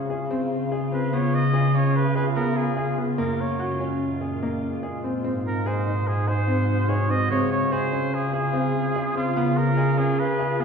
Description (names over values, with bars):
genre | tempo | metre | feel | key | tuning
contemporary instrumental, chamber music in an uneven meter | 146 BPM | 5/4 | straight | unclear | A4 = 435 Hz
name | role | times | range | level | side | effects
evolving wavetable pad | sustained chords | 0.0-10.6 s | Bb2 to C5 | -27 LUFS | equal | chorus, built-in reverb
dark bass clarinet | bass | 0.0-10.6 s | Gb2 to Db3 | -27 LUFS | equal | none
clear baby grand piano | arpeggios | 0.1-10.6 s | Bb3 to Ab4 | -28 LUFS | left 1 dB | none
clear flugelhorn | melody | 0.9-10.6 s | F4 to Eb5 | -27 LUFS | right 2 dB | none
room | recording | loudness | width
wet concert hall reverb, RT60 2.0 s | heard from further back in the room | -21 LUFS | side -6 dB against mid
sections
0.0-10.6 A section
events
none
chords
0.0 Dbmaj7; 1.1 Db7; 3.2 Gbmaj9; 5.2 Ab7; 7.3 Dbmaj7; 9.4 Db7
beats
0.31 0.72 | 1.13 1.54 1.95 2.37 2.78 | 3.19 3.60 4.01 4.42 4.83 | 5.25 5.66 6.07 6.48 6.89 | 7.30 7.72 8.13 8.54 8.95 | 9.36 9.77 10.19 10.60